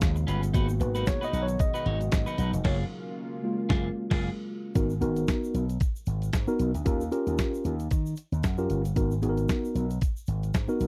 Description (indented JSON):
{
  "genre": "early-eighties boogie funk",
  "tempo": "114 BPM",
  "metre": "4/4",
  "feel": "swing 56% on 16ths",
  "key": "G# dorian",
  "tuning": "A4 = 440 Hz",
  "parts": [
    { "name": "lush unison pad", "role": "sustained chords", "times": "0.0-4.7 s", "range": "B2 to F#4", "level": "-40 LUFS", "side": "equal", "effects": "chorus" },
    { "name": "slap bass with an envelope filter", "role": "bass", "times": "0.0-10.9 s", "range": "E#1 to D#3", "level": "-31 LUFS", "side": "equal", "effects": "none" },
    { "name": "detuned 8-bit digital drum machine", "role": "drums", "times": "0.0-10.9 s", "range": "crash cymbal, hi-hat, kick drum, snare drum", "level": "-30 LUFS", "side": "equal", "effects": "none" },
    { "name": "tube shaker", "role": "percussion", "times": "0.0-10.9 s", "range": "none", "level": "-54 LUFS", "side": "equal", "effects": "none" },
    { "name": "electric guitar at the edge of break-up", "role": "riff", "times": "0.2-4.3 s", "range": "A#3 to C#5", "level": "-38 LUFS", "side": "equal", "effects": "subtle chorus" },
    { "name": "mellow tine electric piano", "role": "accompaniment", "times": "0.5-10.9 s", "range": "G#3 to D#5", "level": "-32 LUFS", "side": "equal", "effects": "none" }
  ],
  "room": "little or no reverb",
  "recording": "dry, close 1970s-style studio recording",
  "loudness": "-28 LUFS",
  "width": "mono",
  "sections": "0.0-4.8 A section; 4.8-10.9 B section",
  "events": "tine electric piano solo 0.0-4.8; band accent 2.6-4.8",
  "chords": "0.0 C#7; 0.5 G#m7; 2.6 F#maj9; 4.8 G#m9; 6.9 D#7; 9.0 G#m9"
}